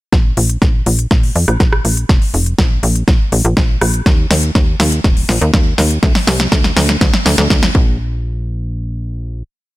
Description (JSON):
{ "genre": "progressive house", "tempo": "122 BPM", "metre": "4/4", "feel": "straight", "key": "Bb major", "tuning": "A4 = 438 Hz", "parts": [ { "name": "tight sequencer bass", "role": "bass", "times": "0.1-9.4 s", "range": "Eb1 to Bb2", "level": "-16 LUFS", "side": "equal", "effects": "sidechain pumping" }, { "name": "big-room dance drum kit", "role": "drums", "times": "0.1-7.7 s", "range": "hi-hat, rim click, snare drum", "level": "-16 LUFS", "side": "equal", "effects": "overdrive, sidechain pumping on hats" }, { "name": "electronic kick drum", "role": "drums", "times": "0.1-7.8 s", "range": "none", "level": "-13 LUFS", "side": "equal", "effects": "none" } ], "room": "digital ambience", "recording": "none", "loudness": "-11 LUFS", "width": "side -18 dB against mid", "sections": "0.1-8.0 build; 8.0-9.8 final hit", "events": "build-up 0.1-8.0; drum fill 0.1-8.0", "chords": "none", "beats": "| 0.13 0.62 1.11 1.60 | 2.09 2.58 3.08 3.57 | 4.06 4.55 5.04 5.54 | 6.03 6.52 7.01 7.50 | 8.00 8.49 8.98" }